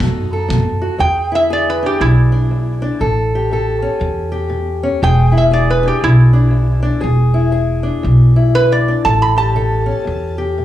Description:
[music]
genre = acoustic country blues, solo or duo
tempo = 119 BPM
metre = 4/4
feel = swing 62% on 8ths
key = E mixolydian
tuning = A4 = 440 Hz
[part]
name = metal-body resonator slide guitar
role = melody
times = 0.0-10.4 s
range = D#4 to B5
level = -17 LUFS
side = right 2 dB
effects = slapback echo
[part]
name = fingerpicked steel-string acoustic guitar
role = accompaniment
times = 0.0-10.6 s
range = E2 to A4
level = -19 LUFS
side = left 2 dB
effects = slapback echo
[part]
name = upright bass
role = bass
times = 0.0-10.6 s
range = E1 to F#2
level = -14 LUFS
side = equal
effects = none
[part]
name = kick drum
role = drums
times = 0.0-0.6 s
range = none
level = -21 LUFS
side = equal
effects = none
[sound]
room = small room ambience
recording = live gig heard through the venue's PA, club reverb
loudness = -12 LUFS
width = side -12 dB against mid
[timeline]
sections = 0.0-1.0 A section; 1.0-10.6 B section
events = resonator guitar played with a steel bar solo 1.0-10.6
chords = 0.0 B7; 1.0 E7; 3.0 A7; 5.0 E7; 9.1 A7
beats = 0.01 0.51 | 1.01 1.51 2.01 2.51 | 3.01 3.52 4.02 4.52 | 5.03 5.53 6.03 6.54 | 7.04 7.55 8.05 8.55 | 9.06 9.56 10.07 10.57

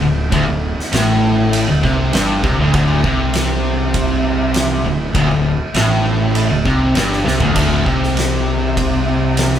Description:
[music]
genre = stoner and doom metal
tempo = 99 BPM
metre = 4/4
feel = straight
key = unclear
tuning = A4 = 439 Hz
[part]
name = biting overdriven guitar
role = riff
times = 0.0-9.6 s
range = D2 to C3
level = -19 LUFS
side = equal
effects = none
[part]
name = fuzz guitar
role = riff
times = 0.0-9.6 s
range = D2 to C3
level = -21 LUFS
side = right 6 dB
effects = distortion
[part]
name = thick fuzz guitar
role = riff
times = 0.0-9.6 s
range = D2 to C3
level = -20 LUFS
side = left 6 dB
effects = distortion
[part]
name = fuzz fingered electric bass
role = bass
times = 0.0-9.6 s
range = D1 to C2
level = -21 LUFS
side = equal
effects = overdrive, tube saturation
[part]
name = oversized low-tuned drum kit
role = drums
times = 0.3-9.6 s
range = crash cymbal, kick drum, ride cymbal, snare drum, toms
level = -20 LUFS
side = right 1 dB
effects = none
[sound]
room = light reverb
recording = band playing live in one room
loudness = -13 LUFS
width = side -10 dB against mid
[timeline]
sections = 0.0-9.6 A section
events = drum fill 7.3-7.6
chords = 0.0 D5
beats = | 0.32 0.93 1.53 2.13 | 2.74 3.34 3.94 4.55 | 5.15 5.75 6.36 6.96 | 7.57 8.17 8.77 9.38

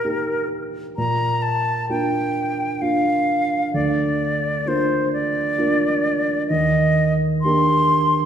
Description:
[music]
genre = classical, romantic duo for flute and grand piano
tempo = 65 BPM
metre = 3/4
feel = rubato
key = Bb major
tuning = A4 = 441 Hz
[part]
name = bright silver concert flute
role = melody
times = 0.0-8.3 s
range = Bb4 to C6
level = -21 LUFS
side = left 1 dB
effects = none
[part]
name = warm grand piano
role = accompaniment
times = 0.0-8.3 s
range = D2 to G4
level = -21 LUFS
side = right 2 dB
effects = none
[sound]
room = wet recital hall reverb, RT60 1.6 s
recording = heard from further back in the room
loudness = -18 LUFS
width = side -8 dB against mid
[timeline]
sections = 0.0-8.3 A section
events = none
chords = 0.0 Eb/Bb; 1.0 Bb; 3.7 Bb/D; 6.5 Ebmaj7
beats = 0.03 | 0.97 1.90 2.82 | 3.75 4.68 5.58 | 6.49 7.44

